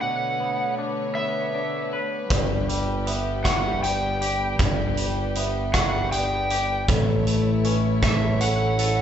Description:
post-rock; 52 BPM (dotted quarters); 6/8; straight; A4 = 439 Hz
overdriven slide guitar; melody; 0.0-9.0 s; E5 to G5; -26 LUFS; right 1 dB
warm chamber string section; sustained chords; 0.0-9.0 s; D3 to C#5; -30 LUFS; left 2 dB
twangy electric guitar; arpeggios; 0.0-9.0 s; G2 to B4; -30 LUFS; left 5 dB
vibraphone with medium hard mallets; arpeggios; 2.3-9.0 s; A4 to E5; -31 LUFS; right 1 dB
growling fingered electric bass; bass; 2.3-9.0 s; G1 to A1; -26 LUFS; right 1 dB; overdrive
big rock drum kit; drums; 2.3-9.0 s; hi-hat, kick drum, rim click; -25 LUFS; right 1 dB
moderate large studio reverb, RT60 0.9 s; band playing live in one room, nothing above 8.0 kHz; -21 LUFS; side -9 dB against mid
0.0-9.0 A section
0.0 Bm7; 2.3 G; 6.9 A

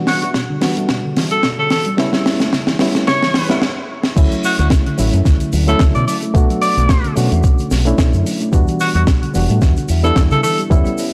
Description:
nu-disco, nu disco; 110 BPM; 4/4; swing 54% on 16ths; D major; A4 = 439 Hz
reed electric piano; accompaniment; 0.0-11.1 s; F#3 to F#4; -23 LUFS; equal; fast tremolo
soft round pluck; arpeggios; 0.0-11.1 s; B2 to E4; -26 LUFS; equal; ensemble chorus, sidechain pumping, analog delay
clear tenor saxophone; melody; 0.1-10.6 s; F#4 to D5; -22 LUFS; equal; analog delay
tight funk drum kit; drums; 0.1-11.1 s; crash cymbal, hi-hat, snare drum; -22 LUFS; equal
fingered electric bass with an envelope filter; bass; 0.2-10.8 s; E1 to C#3; -20 LUFS; equal; transformer saturation, sidechain pumping, high-pass filter
electronic kick drum; drums; 0.3-10.8 s; -16 LUFS; equal; high-pass filter on kick, high-pass filter on room
egg shaker; percussion; 4.2-11.1 s; -36 LUFS; equal
light reverb; dry, gritty hardware recording, transformer saturation, cassette tape; -15 LUFS; mono
0.0-4.2 A section; 4.2-11.1 B section
build-up 0.0-4.2; drum fill 0.0-3.6, 3.6-4.2; filter sweep on reed electric piano 0.0-4.2; stop 3.6-4.2; drop 4.2-11.1
0.0 Em7; 2.0 A7/E; 4.2 Dmaj7; 6.3 Bm7; 8.5 Em7

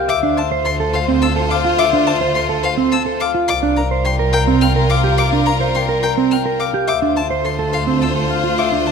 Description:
classical, minimalist pattern music; 106 BPM; 3/4; straight; A4 = 440 Hz
concert harp; melody; 0.0-8.9 s; G4 to A5; -20 LUFS; left 12 dB
mellow electric guitar; arpeggios; 0.0-8.9 s; C4 to C5; -19 LUFS; right 8 dB
clear studio violin section; sustained chords; 0.1-8.9 s; F4 to C5; -24 LUFS; left 4 dB
clear violin; arpeggios; 0.1-8.9 s; F5 to F6; -24 LUFS; left 5 dB
warm studio double bass section; bass; 0.1-8.9 s; C2 to D2; -21 LUFS; right 2 dB
moderate scoring stage reverb, RT60 1.9 s; close, detailed microphones; -14 LUFS; side -6 dB against mid
0.0-8.9 A section
0.1 Dm7; 3.5 C7sus4; 6.9 Dm7

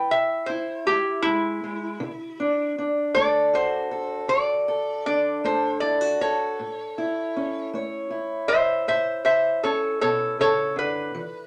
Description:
acoustic country blues, solo or duo; 52 BPM (dotted quarters); 12/8; straight; A major; A4 = 440 Hz
lap resonator guitar; melody; 0.0-11.5 s; E4 to E5; -25 LUFS; equal
fingerpicked steel-string acoustic guitar; accompaniment; 0.0-11.5 s; A2 to C#5; -30 LUFS; equal
wet small room reverb, RT60 0.5 s; -24 LUFS; mono
0.0-11.5 A section
resonator guitar played with a steel bar solo 0.0-11.5
0.0 E; 2.0 D; 6.6 A

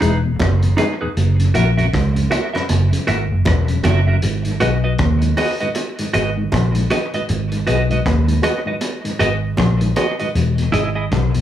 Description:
roots reggae; 78 BPM; 4/4; swing 60% on 16ths; G# minor; A4 = 440 Hz
clean electric guitar; accompaniment; 0.0-11.0 s; D#4 to E5; -22 LUFS; right 3 dB; tremolo, tape echo
mellow tonewheel organ; accompaniment; 0.0-11.4 s; E2 to G#4; -24 LUFS; left 4 dB; chorus vibrato, slow rotary speaker
vintage muted fingered electric bass; bass; 0.0-11.4 s; E1 to D#2; -16 LUFS; equal
crunchy breakbeat drum kit; drums; 0.0-11.4 s; hi-hat, kick drum, rim click; -24 LUFS; left 1 dB; dub echo
bongos; percussion; 0.4-10.2 s; -25 LUFS; right 5 dB
light reverb, studio reverb; studio ambience; -15 LUFS; side -11 dB against mid
0.0-11.4 A section
0.0 Emaj7; 1.2 F#7; 4.2 G#m7; 10.3 Emaj7

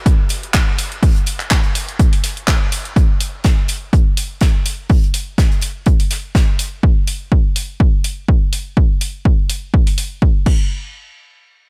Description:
piano house; 124 BPM; 4/4; swing 55% on 16ths
electronic kick drum; drums; 0.1-10.6 s; -16 LUFS; equal
gated 80s drum kit; drums; 0.1-6.7 s; hi-hat, snare drum; -32 LUFS; equal; sidechain pumping on hats, high-pass filter on hats, high-pass filter on snare, high-pass filter on room
house drum kit; drums; 0.1-10.6 s; crash cymbal, handclaps, hi-hat; -25 LUFS; equal
small room ambience; -16 LUFS; mono
0.0-10.7 A section

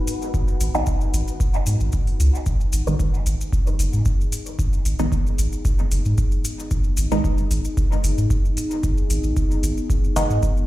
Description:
dub techno; 113 BPM; 4/4; straight; G# minor; A4 = 440 Hz
deep dark ambient pad; sustained chords; 0.0-10.7 s; B3 to F#5; -31 LUFS; left 2 dB; chorus, built-in reverb, vintage 12-bit sampler grit, sidechain pumping
filtered dub chord stab; stabs; 0.0-10.3 s; D#3 to D#4; -27 LUFS; right 1 dB; phaser, sidechain pumping, dub echo
wind-like tuned noise texture; texture; 0.0-2.5 s; G#3 to B3; -41 LUFS; left 2 dB; built-in reverb, sidechain pumping
electronic hi-hat; drums; 0.1-10.3 s; -33 LUFS; right 2 dB
maracas; percussion; 0.1-10.7 s; -35 LUFS; left 3 dB
soft dub sub bass; bass; 0.3-10.4 s; F#1 to G#2; -20 LUFS; equal; sidechain pumping
electronic kick drum; drums; 0.3-10.5 s; -21 LUFS; equal
little or no reverb; played on a big sound system in a bare room, large studio reverb; -19 LUFS; side -16 dB against mid
0.0-2.5 A section; 2.5-10.7 A section
0.0 G#m

